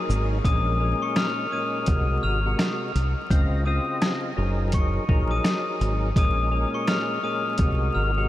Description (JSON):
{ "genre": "hip hop, boom-bap hip-hop", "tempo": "84 BPM", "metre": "4/4", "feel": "swing 61% on 16ths", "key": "Bb minor", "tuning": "A4 = 437 Hz", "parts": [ { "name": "percussive tonewheel organ", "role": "accompaniment", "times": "0.0-8.3 s", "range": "Bb2 to Eb5", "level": "-29 LUFS", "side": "equal", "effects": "chorus vibrato, slow rotary speaker, high-pass filter, low-pass filter" }, { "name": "deep dub fingered electric bass", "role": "bass", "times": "0.1-8.2 s", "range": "Gb1 to Db2", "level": "-24 LUFS", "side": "equal", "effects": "none" }, { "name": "trip hop sampler-style drum kit", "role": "drums", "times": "0.1-7.8 s", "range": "hi-hat, kick drum, rim click, shaker, snare drum", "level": "-26 LUFS", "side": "equal", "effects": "none" }, { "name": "glockenspiel with brass mallets", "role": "melody", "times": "0.4-8.3 s", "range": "Db6 to F7", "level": "-28 LUFS", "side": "left 4 dB", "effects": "high-pass filter, low-pass filter, analog delay" } ], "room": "moderate huge ambient reverb, RT60 9.4 s", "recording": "dreamy mix soaked in reverb, vinyl crackle", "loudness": "-21 LUFS", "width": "side -14 dB against mid", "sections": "0.5-8.3 A section", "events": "none", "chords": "0.5 Bbm7; 1.9 Ab7; 3.3 Dbmaj9; 4.4 Gb69; 6.2 Bbm7; 7.6 Ab7", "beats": "| 0.45 1.17 1.88 2.59 | 3.31 4.02 4.74 5.45 | 6.17 6.88 7.59" }